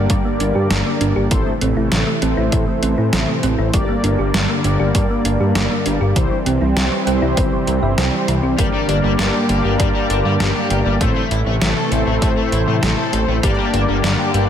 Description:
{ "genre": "synthwave", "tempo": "99 BPM", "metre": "4/4", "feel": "straight", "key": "G dorian", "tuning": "A4 = 440 Hz", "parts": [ { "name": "warm analog pad", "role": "sustained chords", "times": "0.0-14.5 s", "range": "C3 to C4", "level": "-22 LUFS", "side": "right 1 dB", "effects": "chorus, sidechain pumping" }, { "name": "thumb-piano-like synth pluck", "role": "arpeggios", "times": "0.0-8.5 s", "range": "E3 to E5", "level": "-24 LUFS", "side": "right 3 dB", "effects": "chorus, cassette tape, digital delay" }, { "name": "mellow synth brass", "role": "stabs", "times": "0.0-14.5 s", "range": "G2 to D5", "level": "-22 LUFS", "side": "left 2 dB", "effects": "chorus, digital delay" }, { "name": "fat analog bass", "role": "bass", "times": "0.0-14.5 s", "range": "G1 to A2", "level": "-19 LUFS", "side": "equal", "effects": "sidechain pumping" }, { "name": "detuned 8-bit digital drum machine", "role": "drums", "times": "0.1-14.5 s", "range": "hi-hat, snare drum", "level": "-23 LUFS", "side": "equal", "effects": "gated reverb" }, { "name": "electronic kick drum", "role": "drums", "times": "0.1-13.6 s", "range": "none", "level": "-20 LUFS", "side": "equal", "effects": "none" }, { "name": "overdriven electric guitar", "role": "riff", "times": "8.6-14.4 s", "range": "G3 to A4", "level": "-24 LUFS", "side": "left 3 dB", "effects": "lush chorus, digital delay" } ], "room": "light reverb", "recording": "none", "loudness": "-15 LUFS", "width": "side -9 dB against mid", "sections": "0.0-14.5 A section", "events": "none", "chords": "0.0 Gm; 1.3 Am; 3.7 Gm; 6.2 C; 8.6 Gm; 11.0 Am; 13.4 Gm" }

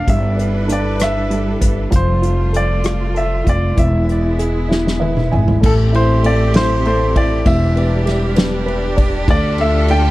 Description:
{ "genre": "six-eight pop ballad", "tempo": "65 BPM (dotted quarters)", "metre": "6/8", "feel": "straight", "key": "A minor", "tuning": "A4 = 441 Hz", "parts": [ { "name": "clear baby grand piano", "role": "melody", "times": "0.0-10.1 s", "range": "A4 to G5", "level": "-21 LUFS", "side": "equal", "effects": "analog delay" }, { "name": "dark upright piano", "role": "accompaniment", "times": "0.0-10.1 s", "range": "D3 to G#5", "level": "-21 LUFS", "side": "equal", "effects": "none" }, { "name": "clear studio string section", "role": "sustained chords", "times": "0.0-10.1 s", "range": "D3 to B4", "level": "-24 LUFS", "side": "right 1 dB", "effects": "none" }, { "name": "upright bass", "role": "bass", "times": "0.0-10.1 s", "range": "E1 to D2", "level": "-17 LUFS", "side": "equal", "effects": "none" }, { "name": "unplugged drum kit", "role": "drums", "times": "0.1-10.0 s", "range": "crash cymbal, hi-hat, kick drum, ride cymbal, rim click, snare drum, toms", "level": "-18 LUFS", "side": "equal", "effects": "none" } ], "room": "little or no reverb", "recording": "dark, warm production", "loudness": "-13 LUFS", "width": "side -17 dB against mid", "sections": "0.0-5.6 A section; 5.6-10.1 B section", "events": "drum fill 4.7-5.6; upright piano fill 4.7-5.6", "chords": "0.1 G6; 1.9 Fadd9; 3.8 E; 5.6 Am7; 7.5 Em7; 9.3 Dm" }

